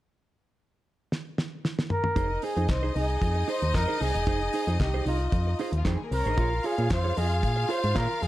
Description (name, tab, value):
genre	disco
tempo	114 BPM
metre	4/4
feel	straight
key	F minor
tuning	A4 = 439 Hz
part	damped 70s drum kit	drums	1.1-8.3 s	handclaps, hi-hat, kick drum, snare drum, toms	-30 LUFS	equal	none
part	breathy flugelhorn	melody	1.9-8.3 s	F4 to C5	-30 LUFS	right 1 dB	none
part	clear symphonic string section	second line	2.2-8.3 s	F3 to F5	-34 LUFS	left 3 dB	none
part	mellow electric guitar	accompaniment	2.2-8.3 s	Eb4 to Eb5	-34 LUFS	right 7 dB	none
part	solid FM bass	bass	2.2-8.3 s	E1 to Bb2	-27 LUFS	equal	none
room	small room ambience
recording	none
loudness	-24 LUFS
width	side -15 dB against mid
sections	0.1-2.2 A section; 2.2-8.3 B section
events	drum fill 1.1-2.2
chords	0.1 N.C.; 2.2 Fm7; 6.4 Bbm7